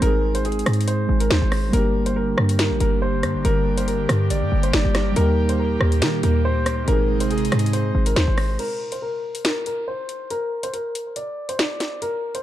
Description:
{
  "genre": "hip hop, drill",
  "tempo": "140 BPM",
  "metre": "4/4",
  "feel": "half-time",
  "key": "unclear",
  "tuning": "A4 = 441 Hz",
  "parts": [
    { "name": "dark baby grand piano", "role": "melody", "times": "0.0-12.4 s", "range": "Ab4 to D5", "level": "-26 LUFS", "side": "left 2 dB", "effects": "low-pass filter, ping-pong delay" },
    { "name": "muted felt-like synth keys", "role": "accompaniment", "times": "0.0-8.6 s", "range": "G3 to Ab4", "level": "-26 LUFS", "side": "right 4 dB", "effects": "chorus" },
    { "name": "short 808-style bass", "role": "bass", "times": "0.0-8.6 s", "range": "G1 to Eb3", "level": "-20 LUFS", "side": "equal", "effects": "none" },
    { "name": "drill drum kit", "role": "drums", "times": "0.0-12.4 s", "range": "crash cymbal, hi-hat, rim click, snare drum", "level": "-25 LUFS", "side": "equal", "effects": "none" },
    { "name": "airy breathy pad", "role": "sustained chords", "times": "1.7-8.6 s", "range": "Bb2 to G4", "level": "-28 LUFS", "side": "equal", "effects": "chorus" }
  ],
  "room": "digital ambience",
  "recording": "dark, warm production",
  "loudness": "-19 LUFS",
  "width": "side -13 dB against mid",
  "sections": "0.0-8.6 A section; 8.6-12.4 B section",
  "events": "break 8.6-12.4",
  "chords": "0.0 Ab; 1.7 Gm; 5.2 Eb; 6.9 Ab; 8.6 N.C."
}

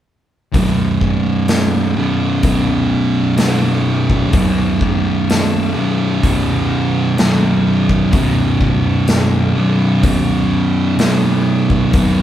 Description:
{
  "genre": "stoner and doom metal",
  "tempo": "63 BPM",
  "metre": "4/4",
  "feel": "straight",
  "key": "unclear",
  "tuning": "A4 = 443 Hz",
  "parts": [
    { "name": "thick fuzz guitar", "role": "riff", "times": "0.5-12.2 s", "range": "B1 to B2", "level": "-18 LUFS", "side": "left 4 dB", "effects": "distortion" },
    { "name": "thick fuzz guitar", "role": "riff", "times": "0.5-12.2 s", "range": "B1 to B2", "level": "-16 LUFS", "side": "right 4 dB", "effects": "distortion" },
    { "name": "big rock drum kit", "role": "drums", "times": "0.5-12.2 s", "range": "hi-hat, kick drum, snare drum", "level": "-18 LUFS", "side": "left 1 dB", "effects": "none" }
  ],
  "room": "moderate large studio reverb, RT60 1.3 s",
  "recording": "band playing live in one room",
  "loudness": "-12 LUFS",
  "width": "side -11 dB against mid",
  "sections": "0.5-12.2 A section",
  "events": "none",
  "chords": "0.5 B5"
}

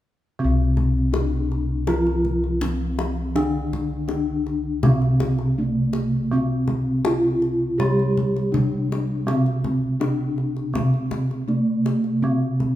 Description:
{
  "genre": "Javanese gamelan",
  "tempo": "81 BPM",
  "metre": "4/4",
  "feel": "straight",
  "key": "C slendro",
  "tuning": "A4 = 439 Hz",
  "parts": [
    { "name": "gamelan-type bronze metallophone", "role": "melody", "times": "0.4-12.8 s", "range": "Bb3-45c to G4+25c", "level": "-25 LUFS", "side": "equal", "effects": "none" },
    { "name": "gamelan-type bronze metallophone", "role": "accompaniment", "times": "0.4-12.8 s", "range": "C3 to G3+25c", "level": "-25 LUFS", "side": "right 2 dB", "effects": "none" },
    { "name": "gamelan-type bossed gongs", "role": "bass", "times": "0.4-12.8 s", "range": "C2 to D4+30c", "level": "-25 LUFS", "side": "left 1 dB", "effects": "none" },
    { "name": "kendang", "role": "percussion", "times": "0.8-12.8 s", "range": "none", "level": "-28 LUFS", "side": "left 2 dB", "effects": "none" }
  ],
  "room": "moderate recital hall reverb, RT60 1.8 s",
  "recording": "minimal, uncompressed stereo recording",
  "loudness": "-20 LUFS",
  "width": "side -13 dB against mid",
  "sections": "0.4-12.8 A section",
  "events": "none",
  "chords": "none"
}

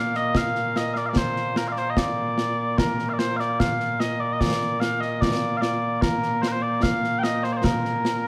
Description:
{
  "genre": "scottish traditional, Scottish pipe music",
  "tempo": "74 BPM",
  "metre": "2/4",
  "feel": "straight",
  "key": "Bb major",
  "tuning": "A4 = 440 Hz",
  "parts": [
    { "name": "mellow small bagpipes", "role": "melody", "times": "0.0-8.3 s", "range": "Bb2 to G5", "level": "-26 LUFS", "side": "equal", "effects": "none" },
    { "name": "concert snare drum and concert bass drum", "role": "drums", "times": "0.1-8.2 s", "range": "none", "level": "-28 LUFS", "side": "equal", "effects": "none" }
  ],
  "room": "light reverb",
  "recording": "none",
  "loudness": "-24 LUFS",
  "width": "mono",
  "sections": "0.0-8.3 A section",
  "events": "none",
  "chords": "none"
}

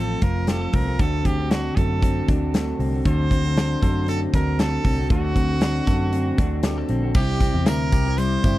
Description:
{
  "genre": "jangly indie pop",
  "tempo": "117 BPM",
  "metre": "4/4",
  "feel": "straight",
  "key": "unclear",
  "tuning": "A4 = 445 Hz",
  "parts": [
    { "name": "brilliant trumpet", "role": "melody", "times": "0.0-8.6 s", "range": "F#4 to C5", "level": "-29 LUFS", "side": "right 3 dB", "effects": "tape echo" },
    { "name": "electric guitar through a small old amp", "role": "accompaniment", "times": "0.0-8.6 s", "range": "C3 to A4", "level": "-29 LUFS", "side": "right 6 dB", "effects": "none" },
    { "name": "electric guitar at the edge of break-up", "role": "arpeggios", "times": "0.0-8.6 s", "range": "C3 to A4", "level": "-26 LUFS", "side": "left 4 dB", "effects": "spring reverb" },
    { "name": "vintage muted picked electric bass", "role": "bass", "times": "0.0-8.6 s", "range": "F1 to F#2", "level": "-24 LUFS", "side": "equal", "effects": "none" },
    { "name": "big rock drum kit", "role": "drums", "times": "0.2-8.6 s", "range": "crash cymbal, hi-hat, kick drum, snare drum", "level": "-23 LUFS", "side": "equal", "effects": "none" },
    { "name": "tambourine", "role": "percussion", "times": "7.1-8.6 s", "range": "none", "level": "-44 LUFS", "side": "left 8 dB", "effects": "none" }
  ],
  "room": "little or no reverb",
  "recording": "dry, close 1970s-style studio recording",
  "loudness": "-19 LUFS",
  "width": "side -16 dB against mid",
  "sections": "0.0-7.2 A section; 7.2-8.6 B section",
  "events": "none",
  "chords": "0.0 F; 1.0 D7; 7.2 C"
}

